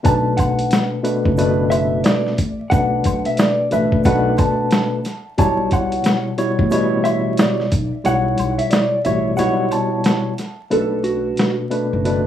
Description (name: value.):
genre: hip hop, boom-bap hip-hop.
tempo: 90 BPM.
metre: 4/4.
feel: swing 62% on 16ths.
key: B minor.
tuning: A4 = 440 Hz.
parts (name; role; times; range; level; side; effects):
bright tine electric piano; accompaniment; 0.0-12.3 s; B2 to C#5; -19 LUFS; left 1 dB; medium stereo tremolo, high-pass filter, low-pass filter.
dusty soul sampler-style drum kit; drums; 0.0-12.2 s; hi-hat, kick drum, snare drum; -19 LUFS; equal; none.
mellow electric guitar; melody; 0.1-11.6 s; F#4 to A5; -22 LUFS; equal; analog chorus, high-pass filter, low-pass filter, tape echo.
upright bass; bass; 0.1-12.3 s; F#1 to B1; -23 LUFS; left 1 dB; none.
egg shaker and woodblock; percussion; 0.1-10.6 s; none; -35 LUFS; equal; none.
room: moderate small room ambience, RT60 0.5 s.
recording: rough home demo mix, vinyl crackle, studio ambience.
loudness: -16 LUFS.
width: side -10 dB against mid.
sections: 0.0-10.7 A section; 10.7-12.3 B section.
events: kick muted 8.1-10.7, 10.7-12.3.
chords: 0.1 Bm7; 5.4 A7; 10.7 Bm7.